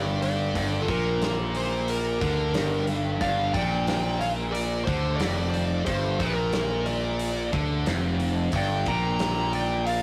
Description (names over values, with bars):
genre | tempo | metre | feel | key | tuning
blues rock power trio and southern rock | 90 BPM | 4/4 | straight | G minor | A4 = 440 Hz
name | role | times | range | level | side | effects
bluesy overdriven lead guitar | melody | 0.0-10.0 s | A4 to Bb5 | -32 LUFS | equal | distortion
lightly driven lead guitar | second line | 0.0-10.0 s | F4 to G5 | -40 LUFS | equal | none
biting overdriven guitar | riff | 0.0-10.0 s | F2 to D3 | -32 LUFS | equal | none
fuzz fingered electric bass | bass | 0.0-10.0 s | F1 to D2 | -31 LUFS | equal | overdrive
big rock drum kit | drums | 0.2-10.0 s | hi-hat, kick drum, snare drum | -35 LUFS | equal | none
room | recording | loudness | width
light reverb | rough rehearsal-room recording, warm saturation | -26 LUFS | mono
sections
0.0-10.0 A section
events
none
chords
0.0 Gm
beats
| 0.56 1.23 1.89 2.55 | 3.22 3.88 4.55 5.21 | 5.88 6.54 7.21 7.87 | 8.54 9.20 9.87